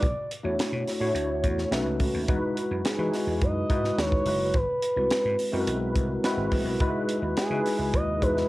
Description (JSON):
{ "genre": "polished 1980s jazz-funk pop", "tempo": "106 BPM", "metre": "4/4", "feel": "straight", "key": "E major", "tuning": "A4 = 440 Hz", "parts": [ { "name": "expressive synth lead", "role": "melody", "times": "0.0-8.5 s", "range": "G#4 to D#5", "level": "-28 LUFS", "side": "equal", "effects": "chorus, cassette tape" }, { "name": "tine electric piano", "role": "accompaniment", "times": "0.0-8.5 s", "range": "G#3 to C#5", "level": "-27 LUFS", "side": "left 1 dB", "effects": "fast stereo tremolo, ensemble chorus, cassette tape" }, { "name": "vintage slap bass", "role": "bass", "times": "0.0-8.4 s", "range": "F#1 to E3", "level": "-32 LUFS", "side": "equal", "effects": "none" }, { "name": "crisp fusion drum kit", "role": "drums", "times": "0.0-8.4 s", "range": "hi-hat, kick drum, snare drum", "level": "-29 LUFS", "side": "equal", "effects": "cassette tape" } ], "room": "light reverb", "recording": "home recording on cassette", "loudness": "-24 LUFS", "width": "side -18 dB against mid", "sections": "0.0-8.5 A section", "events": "none", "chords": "0.0 Bm11; 1.7 B7; 2.3 Emaj9; 4.5 G#7alt; 6.8 C#m11" }